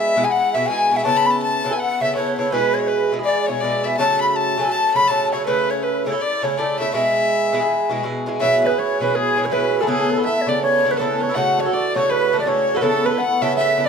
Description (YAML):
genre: celtic folk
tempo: 163 BPM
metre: 4/4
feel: swing 62% on 8ths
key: E mixolydian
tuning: A4 = 440 Hz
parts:
  - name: breathy mellow wooden flute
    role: melody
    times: 0.0-13.9 s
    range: G#4 to B5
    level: -19 LUFS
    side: equal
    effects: none
  - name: rich fiddle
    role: second line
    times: 0.0-13.9 s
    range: G#4 to B5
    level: -25 LUFS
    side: left 5 dB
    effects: none
  - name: Irish bouzouki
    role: accompaniment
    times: 0.0-13.9 s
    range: B2 to A4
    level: -21 LUFS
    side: right 1 dB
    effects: none
  - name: cimbalom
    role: second line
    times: 8.4-13.9 s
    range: G#4 to F#5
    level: -26 LUFS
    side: right 5 dB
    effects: none
room: light reverb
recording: close, detailed microphones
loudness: -16 LUFS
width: side -6 dB against mid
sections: 0.0-8.4 A section; 8.4-13.9 B section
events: none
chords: 0.0 E; 1.0 Aadd9; 2.5 E; 4.0 F#m; 5.5 A; 6.9 E; 8.4 Eadd9; 9.9 Aadd9; 11.4 F#m; 12.8 Aadd9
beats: 0.31 0.68 | 1.04 1.41 1.78 2.15 | 2.52 2.89 3.25 3.62 | 3.99 4.36 4.73 5.10 | 5.46 5.83 6.20 6.57 | 6.94 7.31 7.67 8.04 | 8.41 8.78 9.15 9.52 | 9.88 10.25 10.62 10.99 | 11.36 11.72 12.09 12.46 | 12.83 13.20 13.56